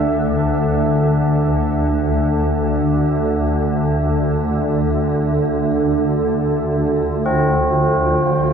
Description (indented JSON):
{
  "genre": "dark ambient drone",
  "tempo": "free time",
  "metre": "none",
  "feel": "none",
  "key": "D minor",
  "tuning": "A4 = 442 Hz",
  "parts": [
    { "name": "deep dark ambient pad", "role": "sustained chords", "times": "0.0-8.5 s", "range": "D3 to G5", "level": "-19 LUFS", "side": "right 2 dB", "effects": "chorus, built-in reverb" },
    { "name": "swarming drone", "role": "drone", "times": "0.0-8.5 s", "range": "D2 to D3", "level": "-18 LUFS", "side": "left 1 dB", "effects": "built-in reverb" },
    { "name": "tubular bells", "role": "arpeggios", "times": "7.3-8.5 s", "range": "C4", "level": "-17 LUFS", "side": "equal", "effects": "none" }
  ],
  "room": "wet cathedral reverb, RT60 5.3 s",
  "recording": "dark, warm production",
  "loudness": "-15 LUFS",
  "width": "side -7 dB against mid",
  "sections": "0.0-8.5 A section",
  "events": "none",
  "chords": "0.0 D5; 4.9 F/D"
}